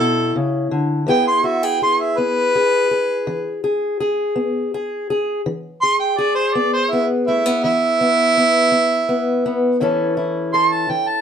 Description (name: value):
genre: acoustic country blues, solo or duo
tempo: 55 BPM (dotted quarters)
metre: 12/8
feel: straight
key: unclear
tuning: A4 = 440 Hz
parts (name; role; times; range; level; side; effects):
- mellow harmonica; melody; 0.0-11.2 s; E4 to C6; -16 LUFS; right 2 dB; none
- fingerpicked steel-string acoustic guitar; accompaniment; 0.0-11.2 s; A2 to A4; -20 LUFS; left 2 dB; none
room: moderate studio reverb, RT60 0.6 s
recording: none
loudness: -16 LUFS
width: side -8 dB against mid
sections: 0.0-11.2 A section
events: harmonica solo 0.0-11.2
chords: 0.0 A; 1.1 E; 9.8 A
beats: | 1.07 2.17 3.26 4.35 | 5.44 6.53 7.61 8.70 | 9.79 10.87